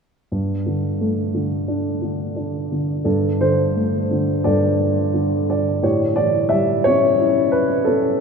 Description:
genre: classical, lyrical solo piano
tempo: 88 BPM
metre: 4/4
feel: rubato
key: unclear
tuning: A4 = 440 Hz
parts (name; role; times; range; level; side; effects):
- dark grand piano; solo; 0.3-8.2 s; G2 to E5; -17 LUFS; equal; none
room: wet cathedral reverb, RT60 5.8 s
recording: in a vast, echoing space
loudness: -17 LUFS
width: side -5 dB against mid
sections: 0.3-3.1 A section; 3.1-8.2 B section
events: none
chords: 0.3 Gsus2; 5.8 A7

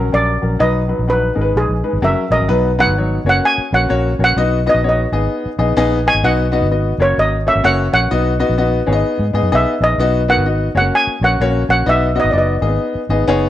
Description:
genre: uptempo 1960s-style soul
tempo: 128 BPM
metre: 4/4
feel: swing 61% on 8ths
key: B major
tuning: A4 = 440 Hz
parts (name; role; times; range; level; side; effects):
- warm upright piano; accompaniment; 0.0-13.5 s; F#3 to D#5; -17 LUFS; left 3 dB; none
- vintage muted fingered electric bass; bass; 0.0-13.5 s; F#1 to G#2; -18 LUFS; equal; none
- steel pan; melody; 0.1-12.8 s; G#4 to G#5; -16 LUFS; right 1 dB; none
room: light reverb, small room reverb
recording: none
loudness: -13 LUFS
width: side -13 dB against mid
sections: 0.0-2.5 A section; 2.5-13.5 B section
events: steel pan solo 0.0-2.5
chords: 0.0 F#; 0.6 B; 1.3 G#m; 2.0 F#; 2.5 B; 3.2 F#; 4.4 B; 5.1 G#m; 6.2 B; 6.9 F#; 8.1 B; 8.8 G#m; 10.7 F#; 11.9 B; 12.6 G#m

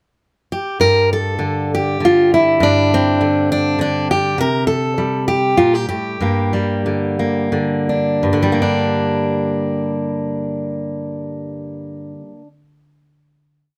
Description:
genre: folk, solo fingerstyle acoustic guitar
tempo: 84-102 BPM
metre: 3/4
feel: straight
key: G dorian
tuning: A4 = 440 Hz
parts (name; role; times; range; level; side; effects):
- fingerpicked steel-string acoustic guitar; solo; 0.5-12.5 s; G2 to Bb4; -18 LUFS; equal; none
room: light reverb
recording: none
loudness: -17 LUFS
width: mono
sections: 0.0-0.8 pickup bar; 0.8-8.2 A section; 8.2-12.5 final chord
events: slowing down 4.4-8.2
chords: 0.0 N.C.; 0.8 G5; 4.4 C5; 6.2 Gm

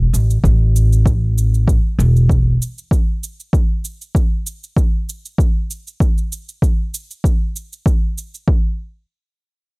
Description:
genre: organic downtempo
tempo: 97 BPM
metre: 4/4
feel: straight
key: unclear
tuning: A4 = 436 Hz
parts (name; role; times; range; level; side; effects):
- upright bass; bass; 0.0-2.5 s; E1 to A1; -13 LUFS; equal; sidechain pumping
- shaker; drums; 0.1-8.5 s; none; -30 LUFS; right 4 dB; none
- electronic kick drum; drums; 0.4-8.6 s; none; -15 LUFS; equal; none
room: little or no reverb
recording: dry, gritty hardware recording, transformer saturation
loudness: -15 LUFS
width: side -33 dB against mid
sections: 0.0-8.5 A section; 8.5-9.8 B section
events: filter sweep on upright bass 0.0-3.5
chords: none

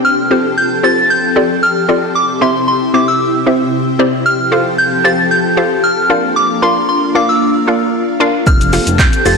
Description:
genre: dance-pop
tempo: 114 BPM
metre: 4/4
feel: straight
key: F major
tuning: A4 = 438 Hz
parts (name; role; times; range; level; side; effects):
- soft synth bell; melody; 0.0-9.4 s; C6 to A6; -14 LUFS; equal; chorus, ping-pong delay
- hollow square pluck; accompaniment; 0.0-9.4 s; C4 to F5; -16 LUFS; equal; chorus, sidechain pumping
- glassy FM pad; sustained chords; 0.0-9.4 s; C3 to A4; -16 LUFS; left 2 dB; ensemble chorus, built-in reverb, sidechain pumping
- chorused synth bass; bass; 8.5-9.4 s; F1; -15 LUFS; equal; sidechain pumping
- deep house drum kit; drums; 8.5-9.4 s; handclaps, hi-hat, kick drum, shaker; -12 LUFS; equal; none
room: moderate lush hall reverb, RT60 1.9 s, digital ambience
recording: blown-out, overdriven recording, overdrive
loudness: -10 LUFS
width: side -4 dB against mid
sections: 0.0-9.4 A section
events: none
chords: 0.0 Fadd9; 2.2 C; 4.3 Fadd9; 6.1 Bb; 8.5 Fadd9

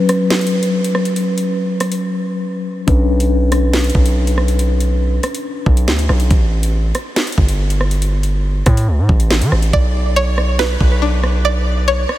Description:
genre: hip hop, drill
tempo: 140 BPM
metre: 4/4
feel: half-time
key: B minor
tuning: A4 = 440 Hz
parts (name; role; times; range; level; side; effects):
- mellow tine electric piano; accompaniment; 0.0-6.3 s; F#3 to B4; -18 LUFS; left 2 dB; medium stereo tremolo, low-pass filter
- drill drum kit; drums; 0.1-12.2 s; hi-hat, kick drum, rim click, snare drum; -18 LUFS; equal; none
- distorted 808-style bass; bass; 2.9-12.1 s; G1 to E3; -15 LUFS; equal; distortion
- string-like resonator pluck; arpeggios; 9.7-12.2 s; D4 to D5; -18 LUFS; right 1 dB; chorus, low-pass filter, analog delay
room: light reverb, digital ambience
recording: none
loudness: -13 LUFS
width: side -14 dB against mid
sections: 0.0-12.2 A section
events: break 0.0-2.9; filter sweep 0.0-9.7; hi-hats muted 9.7-12.2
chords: 0.0 F#sus4; 2.9 Bmadd9; 6.3 A5; 9.7 Bmadd9

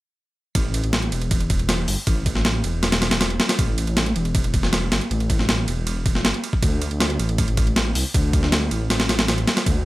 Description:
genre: drum and bass, jungle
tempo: 158 BPM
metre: 4/4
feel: straight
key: unclear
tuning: A4 = 439 Hz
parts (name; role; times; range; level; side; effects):
- dark detuned saw bass; bass; 0.6-9.8 s; E1 to D2; -23 LUFS; equal; none
- breakbeat sampler-style drum kit; drums; 0.6-9.8 s; hi-hat, kick drum, ride cymbal, snare drum; -20 LUFS; equal; overdrive
room: little or no reverb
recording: none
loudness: -18 LUFS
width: side -18 dB against mid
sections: 0.6-9.8 A section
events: none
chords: none

